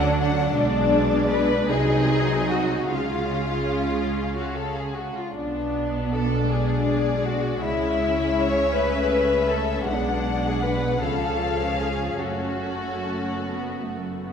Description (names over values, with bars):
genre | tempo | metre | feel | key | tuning
classical, slow romantic movement for string orchestra | 48-55 BPM (dotted quarters) | 6/8 | rubato | unclear | A4 = 440 Hz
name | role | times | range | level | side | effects
muted symphonic violin section | melody | 0.0-14.0 s | A4 to F#5 | -30 LUFS | left 5 dB | none
muted studio violin section | second line | 0.0-14.2 s | D4 to C#5 | -25 LUFS | left 2 dB | none
muted symphonic viola section | accompaniment | 0.0-14.3 s | E#3 to Eb4 | -28 LUFS | right 1 dB | none
muted symphonic cello section | bass | 0.0-14.3 s | F#2 to D3 | -29 LUFS | right 2 dB | none
muted symphonic double bass section | bass | 0.0-14.3 s | F#1 to D2 | -30 LUFS | right 2 dB | none
room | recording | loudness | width
wet concert hall reverb, RT60 2.5 s | none | -21 LUFS | side -7 dB against mid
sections
0.0-14.3 A section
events
none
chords
0.0 Dmaj7; 0.6 G#dim/B; 1.7 Cdim; 2.9 C#; 5.3 Bm; 6.5 G#dim/B; 7.6 C#m; 8.8 A/C#; 9.9 G#dim/B; 11.0 C#; 12.2 F#m